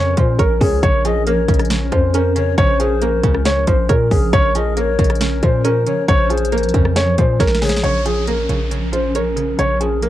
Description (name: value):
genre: hip hop, trap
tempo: 137 BPM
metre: 4/4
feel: half-time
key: Bb minor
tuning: A4 = 440 Hz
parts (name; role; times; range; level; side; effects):
- dark concert grand piano; melody; 0.0-10.1 s; Ab4 to Db5; -18 LUFS; equal; low-pass filter
- string-like resonator pluck; accompaniment; 0.0-10.1 s; Db3 to Db5; -26 LUFS; right 8 dB; chorus, low-pass filter, cassette tape
- granular cloud pad; sustained chords; 0.0-10.1 s; F3 to Bb4; -25 LUFS; equal; built-in reverb, cassette tape
- hard-hitting 808-style bass; bass; 0.0-10.1 s; Bb1 to Bb2; -19 LUFS; equal; none
- trap drum kit; drums; 0.2-10.1 s; hi-hat, kick drum, rim click, snare drum; -18 LUFS; equal; cassette tape
- breathy bright large pan pipes; second line; 0.4-7.8 s; Bb4 to Eb5; -27 LUFS; left 10 dB; cassette tape, analog delay
- downlifter; sound effects; 7.8-10.1 s; none; -32 LUFS; equal; none
room: light reverb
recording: home recording on cassette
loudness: -14 LUFS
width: side -13 dB against mid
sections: 0.0-7.8 A section; 7.8-10.1 B section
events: drum fill 7.4-7.8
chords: 0.0 Bbm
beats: 0.39 | 0.83 1.27 1.70 2.14 | 2.58 3.02 3.46 3.89 | 4.33 4.77 5.21 5.65 | 6.08 6.52 6.96 7.40 | 7.83 8.27 8.71 9.15 | 9.59 10.03